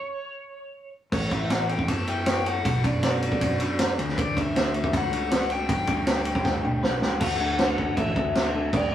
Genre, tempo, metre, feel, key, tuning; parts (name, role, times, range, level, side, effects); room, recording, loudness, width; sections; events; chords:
indie rock; 158 BPM; 4/4; straight; D major; A4 = 440 Hz
crunchy overdriven guitar; melody; 0.0-8.9 s; C#5 to A5; -30 LUFS; left 3 dB; phaser
clean electric guitar; riff; 1.1-8.9 s; B2 to D5; -29 LUFS; equal
picked electric bass; bass; 1.1-8.9 s; F#1 to F#2; -31 LUFS; right 1 dB
vintage drum kit; drums; 1.1-8.8 s; crash cymbal, kick drum, ride cymbal, snare drum, toms; -25 LUFS; right 1 dB
light reverb; rough rehearsal-room recording, small room ambience; -22 LUFS; side -11 dB against mid
0.0-1.1 A section; 1.1-7.2 B section; 7.2-8.9 C section
stop 0.0-1.1; drum fill 6.5-7.2
0.0 N.C.; 1.1 Aadd9; 2.6 Bm; 4.0 D; 5.7 Gadd9; 7.2 D